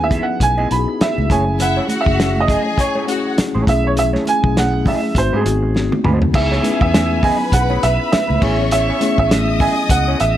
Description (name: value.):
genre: lush 1970s-style soul.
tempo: 101 BPM.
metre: 4/4.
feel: swing 58% on 16ths.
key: C# minor.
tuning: A4 = 440 Hz.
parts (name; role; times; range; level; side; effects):
warm baby grand piano; melody; 0.0-10.4 s; G#4 to B5; -19 LUFS; right 4 dB; none.
mellow tine electric piano; accompaniment; 0.0-10.4 s; G#3 to B4; -22 LUFS; left 5 dB; slow stereo tremolo, tube saturation.
mellow electric guitar; riff; 0.0-10.2 s; A3 to E5; -26 LUFS; right 3 dB; wah.
vintage muted fingered electric bass; bass; 0.0-10.3 s; F#1 to G#2; -20 LUFS; equal; none.
congas; percussion; 0.0-10.1 s; none; -27 LUFS; right 4 dB; none.
warm soul drum kit; drums; 0.1-10.4 s; crash cymbal, hi-hat, kick drum, snare drum, toms; -19 LUFS; equal; none.
warm studio string section; second line; 1.6-10.4 s; E4 to D#6; -23 LUFS; left 5 dB; none.
room: little or no reverb.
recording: none.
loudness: -14 LUFS.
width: side -12 dB against mid.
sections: 0.0-6.3 A section; 6.3-10.4 B section.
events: grand piano solo 0.0-6.3; drum fill 5.7-6.3.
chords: 0.0 C#m9; 1.3 F#m9; 3.7 B13sus4; 5.2 G#7b9; 6.3 C#m7; 8.4 Amaj7.